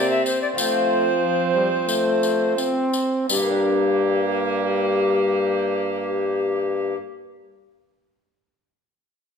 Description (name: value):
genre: classical, renaissance-style consort dance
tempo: 82-98 BPM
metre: 4/4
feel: straight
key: G minor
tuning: A4 = 440 Hz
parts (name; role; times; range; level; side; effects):
- bright tenor recorder; melody; 0.0-7.0 s; G4 to E5; -24 LUFS; left 5 dB; none
- dark violin; second line; 0.0-6.9 s; Bb3 to C4; -28 LUFS; right 6 dB; none
- clear trombone; accompaniment; 0.0-6.9 s; F3 to C4; -26 LUFS; left 1 dB; none
- lute; accompaniment; 0.0-7.2 s; G2 to Bb4; -30 LUFS; equal; none
- mellow bassoon; bass; 0.0-6.9 s; G2 to F3; -25 LUFS; right 3 dB; none
- tambourine; percussion; 0.3-3.6 s; none; -28 LUFS; left 4 dB; none
room: wet recital hall reverb, RT60 1.5 s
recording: minimal, uncompressed stereo recording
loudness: -19 LUFS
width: side -6 dB against mid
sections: 0.0-3.3 A section; 3.3-6.2 B section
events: slowing down 0.0-3.3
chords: 0.0 C5; 0.6 F; 3.3 Gm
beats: | 0.57 1.22 1.89 2.58 | 3.30 4.03 4.77 5.50